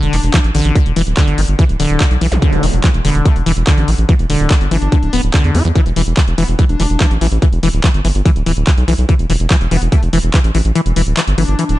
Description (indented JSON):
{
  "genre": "psychedelic trance",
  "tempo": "144 BPM",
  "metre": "4/4",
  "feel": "straight",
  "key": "E minor",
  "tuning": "A4 = 441 Hz",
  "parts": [
    { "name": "metallic wobble bass", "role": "second line", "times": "0.0-0.4, 3.0-7.1, 9.7-11.8 s", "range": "A3 to D4", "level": "-25 LUFS", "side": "left 4 dB", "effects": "chorus, vintage 12-bit sampler grit, sidechain pumping, high-pass filter, digital delay" },
    { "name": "liquid acid bass", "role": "riff", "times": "0.0-11.6 s", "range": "D3 to F4", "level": "-18 LUFS", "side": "left 2 dB", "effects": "chorus, auto-pan, sidechain pumping, ping-pong delay" },
    { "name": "round analog bass", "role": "bass", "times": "0.0-11.8 s", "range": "D1 to E2", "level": "-14 LUFS", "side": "equal", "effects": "none" },
    { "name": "techno drum kit", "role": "drums", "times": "0.0-11.8 s", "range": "handclaps, hi-hat", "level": "-22 LUFS", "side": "equal", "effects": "overdrive, studio ambience" },
    { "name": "electronic kick drum", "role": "drums", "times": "0.3-10.4 s", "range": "none", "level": "-12 LUFS", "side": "equal", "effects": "studio ambience" },
    { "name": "zap and reverse cymbal", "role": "sound effects", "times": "2.3-2.4, 11.7-11.8 s", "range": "none", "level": "-22 LUFS", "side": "equal", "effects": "none" }
  ],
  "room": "little or no reverb",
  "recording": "dark, warm production, nothing above 10.9 kHz",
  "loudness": "-11 LUFS",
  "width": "side -16 dB against mid",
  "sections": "0.0-11.8 A section",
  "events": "kick drops out 10.8-11.8; reverse cymbal 11.7",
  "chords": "0.0 E5",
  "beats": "0.34 | 0.76 1.17 1.59 2.00 | 2.42 2.84 3.25 3.67 | 4.09 4.50 4.92 5.34 | 5.75 6.17 6.59 7.00 | 7.42 7.84 8.26 8.67 | 9.09 9.51 9.92 10.34 | 10.76 11.17 11.59"
}